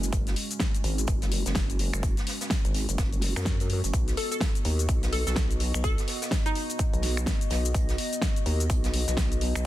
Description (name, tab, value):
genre	bass house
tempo	126 BPM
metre	4/4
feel	swing 60% on 16ths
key	unclear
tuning	A4 = 440 Hz
part	dark analog pad	sustained chords	0.0-9.7 s	G#3 to D#5	-36 LUFS	right 1 dB	wide subtle chorus, sidechain pumping
part	vowel-sweep wobble bass	bass	0.0-9.7 s	F#1 to F#2	-28 LUFS	equal	chorus, overdrive, sidechain pumping
part	big-room dance drum kit	drums	0.0-9.6 s	finger snaps, hi-hat, shaker, snare drum	-32 LUFS	left 1 dB	none
part	electronic kick drum	drums	0.1-9.3 s	none	-27 LUFS	equal	none
part	vintage brush drum kit	drums	0.1-9.5 s	hi-hat, snare drum	-40 LUFS	right 2 dB	high-pass filter on hats, high-pass filter on snare, high-pass filter on room
part	hollow square pluck	melody	4.2-7.1 s	D#4 to A4	-34 LUFS	left 1 dB	analog chorus, tape echo
room	digital ambience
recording	dense, heavily limited modern master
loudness	-24 LUFS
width	side -14 dB against mid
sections	0.0-9.7 A section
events	none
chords	0.0 F#sus2; 3.9 B